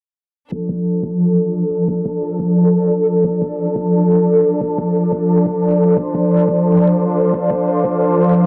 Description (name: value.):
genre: dark technical drum and bass.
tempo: 176 BPM.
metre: 4/4.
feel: straight.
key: D minor.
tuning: A4 = 444 Hz.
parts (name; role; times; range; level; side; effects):
bright studio string section; sustained chords; 0.5-8.5 s; F3 to C5; -19 LUFS; equal; sidechain pumping.
electronic hi-hat; drums; 0.5-8.4 s; none; -56 LUFS; equal; none.
electronic kick drum; drums; 0.5-7.9 s; none; -28 LUFS; equal; high-pass filter on kick, high-pass filter on room.
airy breathy pad; texture; 0.9-8.5 s; F3 to A5; -18 LUFS; equal; chorus, phaser, sidechain pumping.
room: light reverb.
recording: low-pass filter.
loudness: -16 LUFS.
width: mono.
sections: 0.5-8.5 A section.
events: filter sweep 0.5-8.5.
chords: 0.5 Dm.